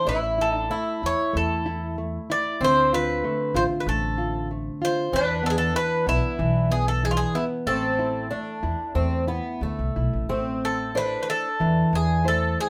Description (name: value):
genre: fado-style ballad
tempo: 94 BPM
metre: 4/4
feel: rubato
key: A harmonic minor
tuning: A4 = 440 Hz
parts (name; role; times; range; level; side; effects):
- Greek bouzouki; melody; 0.0-12.7 s; E4 to D5; -27 LUFS; equal; none
- fingerpicked twelve-string acoustic guitar; second line; 0.0-12.7 s; A3 to E4; -32 LUFS; equal; none
- nylon-string guitar; accompaniment; 0.0-12.7 s; D3 to C5; -30 LUFS; equal; none
- upright bass; bass; 0.1-12.5 s; A1 to E2; -30 LUFS; equal; none
room: moderate studio reverb, RT60 0.7 s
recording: none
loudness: -24 LUFS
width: mono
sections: 0.0-10.3 A section; 10.3-12.7 B section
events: none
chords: 0.1 A5; 2.6 Dm7; 5.1 E5; 7.7 Am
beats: | 0.07 0.71 1.35 1.98 | 2.60 3.23 3.86 4.50 | 5.12 5.75 6.39 7.03 | 7.67 8.31 8.95 9.62 | 10.30 10.95 11.60 12.24